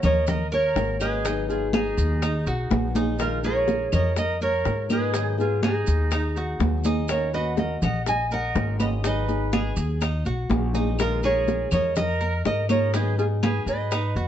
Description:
latin, Cuban son and guajira; 123 BPM; 4/4; straight; A4 = 437 Hz
nylon-string guitar; melody; 0.0-14.3 s; Ab4 to Ab5; -27 LUFS; right 1 dB; plate reverb
breathy bright jazz flute; second line; 0.0-14.3 s; Eb4 to Eb5; -32 LUFS; right 4 dB
flamenco guitar; accompaniment; 0.0-14.0 s; Eb3 to Bb4; -32 LUFS; left 7 dB
Cuban tres; arpeggios; 0.0-14.3 s; Eb4 to Eb5; -34 LUFS; right 1 dB
upright bass; bass; 0.0-14.3 s; Ab1 to Ab2; -26 LUFS; equal
claves; percussion; 0.0-14.2 s; -38 LUFS; left 4 dB
congas; percussion; 0.0-14.3 s; -28 LUFS; right 2 dB
maracas; percussion; 0.0-14.3 s; -41 LUFS; right 6 dB
bongos; percussion; 0.3-14.3 s; -31 LUFS; left 6 dB
light reverb; dark, warm production, nothing above 7.9 kHz; -21 LUFS; side -10 dB against mid
0.0-14.3 A section
0.0 Ebm7; 1.2 Abm7; 3.2 Bb7sus4; 5.1 Abm7; 7.1 Ebm7; 9.0 Abm7; 11.0 Bb7sus4; 12.9 Abm7

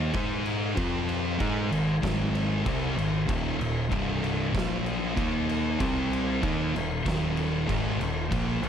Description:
stoner and doom metal; 95 BPM; 4/4; straight; A4 = 440 Hz
thick fuzz guitar; riff; 0.0-8.7 s; C2 to Ab4; -30 LUFS; left 7 dB; distortion
thick fuzz guitar; riff; 0.0-8.7 s; C2 to Ab4; -30 LUFS; right 8 dB; distortion
growling picked electric bass; bass; 0.0-8.7 s; C1 to Ab2; -33 LUFS; equal; overdrive
oversized low-tuned drum kit; drums; 0.1-8.7 s; crash cymbal, kick drum, snare drum; -31 LUFS; equal
light reverb, small room ambience; -25 LUFS; side -8 dB against mid
0.0-8.7 A section
0.1 Ab5; 0.8 F5; 1.4 Ab5; 3.3 Eb5; 3.9 C5; 4.5 Bb5; 5.2 Eb5; 5.8 C5; 6.4 Eb5

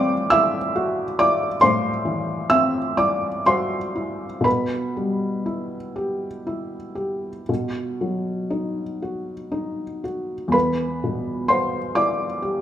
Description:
classical, romantic nocturne for solo piano; 38-46 BPM (dotted quarters); 12/8; rubato; E minor; A4 = 439 Hz
felt-muted upright piano; solo; 0.0-12.6 s; E2 to E6; -20 LUFS; equal
moderate recital hall reverb, RT60 1.5 s; minimal, uncompressed stereo recording; -20 LUFS; side -11 dB against mid
0.0-12.6 A section
0.0 F#m7b5/A; 4.5 Em/B; 7.5 B; 10.5 E5

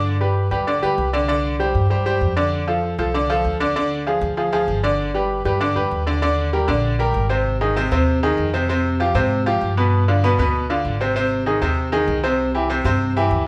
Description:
latin, salsa; 195 BPM; 4/4; straight; C minor; A4 = 438 Hz
bright concert grand piano; accompaniment; 0.0-13.4 s; B2 to D5; -21 LUFS; equal
upright bass; bass; 0.0-13.5 s; G1 to Ab2; -24 LUFS; equal
wet large studio reverb, RT60 0.8 s; band playing live in one room; -20 LUFS; mono
0.0-6.2 A section; 6.2-13.5 B section
0.1 G; 1.3 Csus2; 2.5 F6; 3.8 Ddim; 5.0 G; 6.2 Ebmaj7; 7.5 Ab; 8.7 Fmadd9; 9.9 G7; 11.2 Ab; 12.4 C

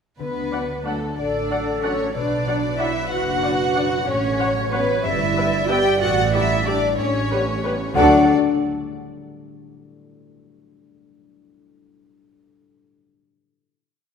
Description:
cinematic, playful, whimsical film cue; 62 BPM (dotted quarters); 6/8; straight; D major; A4 = 440 Hz
warm chamber violin section; melody; 0.2-8.3 s; A4 to G5; -26 LUFS; left 2 dB
warm chamber violin section; second line; 0.2-8.3 s; A4 to G5; -28 LUFS; left 4 dB
concert harp; arpeggios; 0.2-8.3 s; G2 to F#5; -26 LUFS; left 8 dB
clear chamber double bass section; bass; 0.2-8.3 s; F#1 to D2; -27 LUFS; right 5 dB
dark chamber cello section; bass; 0.2-8.3 s; A3 to G4; -26 LUFS; right 4 dB
dark studio viola section; accompaniment; 0.5-8.3 s; F#4 to F#5; -27 LUFS; left 1 dB
mellow French horn section; sustained chords; 0.5-8.2 s; F#3 to D4; -29 LUFS; left 2 dB
small flute group; second line; 1.2-8.3 s; A4 to F#5; -24 LUFS; right 1 dB
wet scoring stage reverb, RT60 1.7 s; -18 LUFS; side -6 dB against mid
0.2-8.0 A section; 8.0-9.9 final chord
0.2 D; 2.2 Bm; 4.1 F#m/A; 5.0 Em/G; 6.0 A7sus4; 7.0 A9; 8.0 D

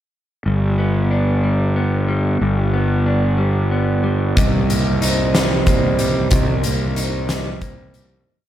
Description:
post-rock; 62 BPM (dotted quarters); 6/8; straight; C minor; A4 = 440 Hz
electric guitar through a small old amp; arpeggios; 0.5-8.3 s; G2 to Eb4; -22 LUFS; equal; analog delay
fuzz fingered electric bass; bass; 0.5-8.2 s; G1 to C2; -18 LUFS; equal; overdrive
vibraphone with soft mallets; arpeggios; 4.4-8.3 s; C5 to Eb5; -26 LUFS; right 3 dB; analog delay
oversized low-tuned drum kit; drums; 4.4-8.1 s; hi-hat, kick drum, snare drum; -19 LUFS; equal
moderate lush hall reverb, RT60 2.2 s; dreamy mix soaked in reverb; -15 LUFS; side -12 dB against mid
0.5-8.3 A section
fade-out 6.3-8.3
0.5 G; 4.4 Cm7

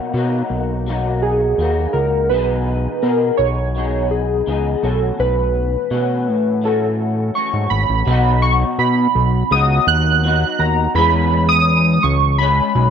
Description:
indie pop, bedroom pop; 83 BPM; 4/4; straight; B major; A4 = 440 Hz
electric guitar through a small old amp; accompaniment; 0.0-12.9 s; B2 to B4; -23 LUFS; left 4 dB; ensemble chorus, warbly pitch drift
fat analog bass; bass; 0.1-12.9 s; G#1 to B2; -18 LUFS; equal
warbly lo-fi synth keys; melody; 1.2-12.9 s; G#4 to F#6; -18 LUFS; right 2 dB; analog chorus, slapback echo
light reverb; -14 LUFS; side -7 dB against mid
0.0-8.1 A section; 8.1-12.9 B section
0.0 Bmaj7; 2.3 Emaj7/B; 4.8 F#m7/B; 8.1 B; 10.9 E6

